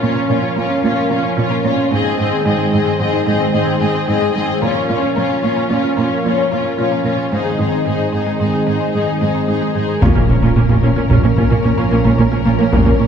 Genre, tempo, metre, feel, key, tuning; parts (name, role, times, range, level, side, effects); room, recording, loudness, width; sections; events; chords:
cinematic, hybrid orchestral and electronic film score; 111 BPM; 5/4; straight; Bb minor; A4 = 439 Hz
warm symphonic violin section; melody; 0.0-13.1 s; Bb4 to Eb5; -24 LUFS; left 6 dB; low-pass filter
warm symphonic violin section; second line; 0.0-10.0 s; F4 to Ab4; -23 LUFS; left 4 dB
clear symphonic viola section; accompaniment; 0.0-13.1 s; Bb3 to F4; -23 LUFS; right 1 dB; low-pass filter
hollow soft pad; sustained chords; 0.0-13.1 s; Eb3 to Eb5; -20 LUFS; equal; chorus, low-pass filter
mallet-like synth pluck; arpeggios; 0.0-13.1 s; Ab3 to Bb4; -25 LUFS; right 1 dB; chorus, low-pass filter
warm symphonic cello section; bass; 0.0-13.1 s; Ab2 to Bb2; -19 LUFS; right 2 dB
fat analog bass; riff; 10.0-13.1 s; Bb2 to Bb3; -17 LUFS; right 2 dB; low-pass filter
warm symphonic double bass section; bass; 10.0-13.1 s; Bb1; -20 LUFS; right 3 dB
taiko ensemble; drums; 10.0-13.1 s; -18 LUFS; left 1 dB
impact; sound effects; 10.0-12.7 s; -22 LUFS; left 1 dB
wet concert hall reverb, RT60 2.2 s; heard from further back in the room; -13 LUFS; side -7 dB against mid
0.0-10.0 A section; 10.0-13.1 B section
build-up 0.0-10.0; impact 10.0-12.7
0.0 Bbm; 1.9 Ab; 4.6 Bbm; 7.3 Ab; 10.0 Bbm